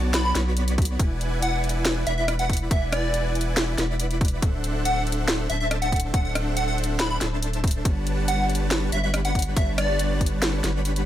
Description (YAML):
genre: future bass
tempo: 140 BPM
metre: 4/4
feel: half-time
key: unclear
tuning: A4 = 442 Hz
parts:
  - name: dense compressed supersaw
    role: riff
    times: 0.0-11.1 s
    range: G3 to B5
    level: -29 LUFS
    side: equal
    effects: sidechain pumping
  - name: saturated sub bass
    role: bass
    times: 0.0-11.1 s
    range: D1 to B1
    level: -26 LUFS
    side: equal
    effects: sidechain pumping
  - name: downlifter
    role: sound effects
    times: 0.0-1.0 s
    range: none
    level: barely audible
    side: none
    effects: none
  - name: plucky unison lead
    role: melody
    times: 0.1-10.2 s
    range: D5 to B5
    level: -27 LUFS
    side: equal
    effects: lush chorus, sidechain pumping, tape echo
  - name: trap drum kit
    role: drums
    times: 0.1-11.0 s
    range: hi-hat, rim click, snare drum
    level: -27 LUFS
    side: equal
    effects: overdrive
  - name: electronic kick drum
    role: drums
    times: 0.8-10.3 s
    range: none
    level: -23 LUFS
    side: equal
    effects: overdrive
room: little or no reverb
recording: none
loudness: -21 LUFS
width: side -12 dB against mid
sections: 0.0-11.1 A section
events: none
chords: 0.0 Bm9; 1.0 E9; 4.4 D7; 7.9 Gmaj9#11